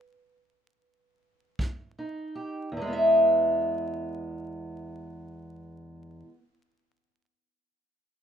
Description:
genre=acoustic country blues, solo or duo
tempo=free time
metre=none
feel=none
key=E major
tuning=A4 = 440 Hz
part: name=fingerpicked steel-string acoustic guitar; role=melody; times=0.0-6.4 s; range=E2 to E5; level=-25 LUFS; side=equal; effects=none
part: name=kick drum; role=drums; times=1.6-1.8 s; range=none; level=-30 LUFS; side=equal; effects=none
room=wet studio reverb, RT60 0.5 s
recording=minimal, uncompressed stereo recording, vinyl crackle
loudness=-24 LUFS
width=side -8 dB against mid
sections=0.0-2.7 A section; 2.7-7.3 B section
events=slowing down 0.0-2.7; stop 0.0-1.6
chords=0.0 N.C.; 1.6 Fsus2; 2.7 E

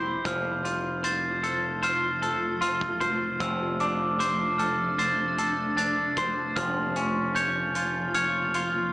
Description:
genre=post-rock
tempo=76 BPM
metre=4/4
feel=straight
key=F major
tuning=A4 = 440 Hz
part: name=granular cloud pad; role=sustained chords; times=0.0-8.9 s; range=C3 to F4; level=-34 LUFS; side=equal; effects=built-in reverb
part: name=glockenspiel with soft plastic mallets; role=arpeggios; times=0.0-8.9 s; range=D6 to A6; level=-28 LUFS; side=right 1 dB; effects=tape echo
part: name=twangy electric guitar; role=arpeggios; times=0.0-8.9 s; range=F3 to Db5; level=-28 LUFS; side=left 1 dB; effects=phaser, tape echo
part: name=growling picked electric bass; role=bass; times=0.0-8.9 s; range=F1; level=-35 LUFS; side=equal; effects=overdrive
part: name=huge arena drum kit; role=drums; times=0.3-8.7 s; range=hi-hat, kick drum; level=-38 LUFS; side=left 1 dB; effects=none
room=moderate studio reverb, RT60 0.7 s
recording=small speaker sound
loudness=-24 LUFS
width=side -19 dB against mid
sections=0.0-8.9 A section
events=none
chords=0.3 F; 3.4 Dm7/F; 6.6 Bbm/F

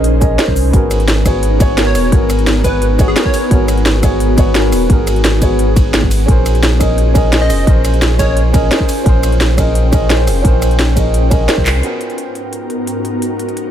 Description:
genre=liquid drum and bass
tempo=173 BPM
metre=4/4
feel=straight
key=unclear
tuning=A4 = 440 Hz
part: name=dark baby grand piano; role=accompaniment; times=0.0-13.7 s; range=B3 to D#5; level=-18 LUFS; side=right 1 dB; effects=digital delay
part: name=ethereal airy pad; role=sustained chords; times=0.0-13.7 s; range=G#2 to G5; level=-20 LUFS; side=equal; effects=ensemble chorus, built-in reverb, sidechain pumping
part: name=warm sub bass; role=bass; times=0.0-11.8 s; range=D#1 to B#1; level=-14 LUFS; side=equal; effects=tube saturation
part: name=drum and bass drum kit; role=drums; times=0.0-13.6 s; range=cabasa, handclaps, hi-hat, ride cymbal, rim click, snare drum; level=-19 LUFS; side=equal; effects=none
part: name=electronic kick drum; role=drums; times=0.2-11.6 s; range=none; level=-13 LUFS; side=equal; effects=none
part: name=plucky unison lead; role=melody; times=1.9-3.6, 7.4-8.4 s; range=G#4 to D#5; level=-21 LUFS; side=equal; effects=tape echo
room=little or no reverb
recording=none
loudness=-10 LUFS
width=side -10 dB against mid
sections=0.0-11.8 A section; 11.8-13.7 B section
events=drop 0.0-11.8; drum fill 11.7; band accent 11.7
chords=0.0 A#m9; 0.7 G#m9; 6.3 A#m9; 11.8 G#m9

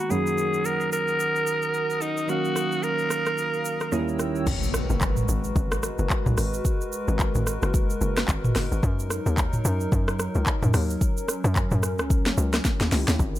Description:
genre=amapiano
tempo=110 BPM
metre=4/4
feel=swing 58% on 16ths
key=G# dorian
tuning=A4 = 440 Hz
part: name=raspy alto saxophone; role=melody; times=0.0-4.2 s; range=D#4 to A#4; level=-25 LUFS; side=equal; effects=low-pass filter, tape echo
part: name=bell-like tine electric piano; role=accompaniment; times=0.0-4.5 s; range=D#3 to E#5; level=-29 LUFS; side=right 4 dB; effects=lush chorus, low-pass filter
part: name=hollow soft pad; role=sustained chords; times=0.0-13.4 s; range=D#3 to E6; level=-32 LUFS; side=left 1 dB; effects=chorus, low-pass filter
part: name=rich cello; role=bass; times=0.1-4.5 s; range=D#2 to F#2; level=-30 LUFS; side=equal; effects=none
part: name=afro-pop drum kit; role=drums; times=0.1-13.4 s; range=crash cymbal, handclaps, hi-hat, kick drum, rim click, shaker, snare drum, toms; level=-25 LUFS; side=equal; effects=none
part: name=tight log drum bass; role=bass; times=4.5-13.4 s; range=F#1 to F#2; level=-26 LUFS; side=equal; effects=none
part: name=impact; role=sound effects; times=4.5-6.6 s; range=none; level=-32 LUFS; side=left 1 dB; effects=none
room=light reverb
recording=none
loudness=-22 LUFS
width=side -14 dB against mid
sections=0.0-4.5 A section; 4.5-13.4 B section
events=drop 4.5-13.4; impact 4.5-6.6; drum fill 12.6-13.2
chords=0.1 F#6; 3.9 D#7b9; 4.5 G#m9; 8.8 F#6; 12.6 D#7b9

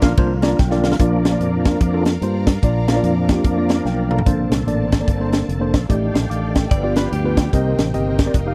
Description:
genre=uptempo gospel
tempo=147 BPM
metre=4/4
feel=swing 61% on 8ths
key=Bb major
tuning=A4 = 439 Hz
part: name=warm horn section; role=melody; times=0.0-0.6 s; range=D4 to Bb4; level=-34 LUFS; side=equal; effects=none
part: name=tine electric piano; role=accompaniment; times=0.0-8.5 s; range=G2 to D6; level=-24 LUFS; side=equal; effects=none
part: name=overdriven tonewheel organ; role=sustained chords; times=0.0-8.5 s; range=D3 to D5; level=-26 LUFS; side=equal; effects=fast rotary speaker, chorus vibrato
part: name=fingered electric bass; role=bass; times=0.0-8.5 s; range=F1 to G2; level=-24 LUFS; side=equal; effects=none
part: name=crisp fusion drum kit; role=drums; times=0.0-8.5 s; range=hi-hat, kick drum, ride cymbal, snare drum, toms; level=-20 LUFS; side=equal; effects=none
part: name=rich studio string section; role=sustained chords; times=1.0-8.5 s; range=Bb3 to Bb5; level=-36 LUFS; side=equal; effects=none
part: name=direct-recorded clean electric guitar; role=second line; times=6.7-7.5 s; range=G4 to D5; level=-30 LUFS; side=equal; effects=none
room=little or no reverb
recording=dry, close 1970s-style studio recording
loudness=-18 LUFS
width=mono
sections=1.0-4.3 A section; 4.3-8.5 B section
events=tine electric piano fill 0.2-1.0, 3.7-4.3; drum fill 0.6-1.0, 3.9-4.3; tonewheel organ solo 1.0-4.3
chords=0.0 Bb; 4.3 Bbmaj9; 5.9 F13/A; 6.7 G7; 7.5 Cm7

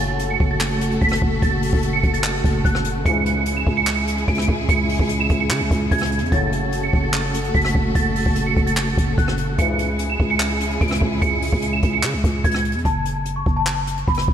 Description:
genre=hip hop, trap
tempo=147 BPM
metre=4/4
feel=half-time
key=F# minor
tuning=A4 = 441 Hz
part: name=celesta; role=melody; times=0.0-14.3 s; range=A5 to E7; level=-24 LUFS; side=right 3 dB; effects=analog chorus, low-pass filter, ping-pong delay
part: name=warm symphonic string section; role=sustained chords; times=0.0-12.8 s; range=C#3 to A4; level=-25 LUFS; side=right 1 dB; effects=none
part: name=warm brass ensemble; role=stabs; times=0.0-0.1, 3.1-3.3, 6.3-6.6, 9.6-9.9 s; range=G#2 to F#3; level=-32 LUFS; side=left 5 dB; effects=ping-pong delay
part: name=growling 808-style bass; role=bass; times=0.0-14.3 s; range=F#1 to C#3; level=-23 LUFS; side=equal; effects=none
part: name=jazz brush drum kit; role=drums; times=0.2-14.3 s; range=handclaps, hi-hat, kick drum, rim click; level=-22 LUFS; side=equal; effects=none
room=moderate cathedral reverb, RT60 4.2 s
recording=dreamy mix soaked in reverb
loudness=-17 LUFS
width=side -9 dB against mid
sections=0.0-12.9 A section; 12.9-14.3 B section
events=none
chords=0.0 F#m; 3.1 C#m; 6.3 F#m; 9.6 C#m; 12.9 F#m

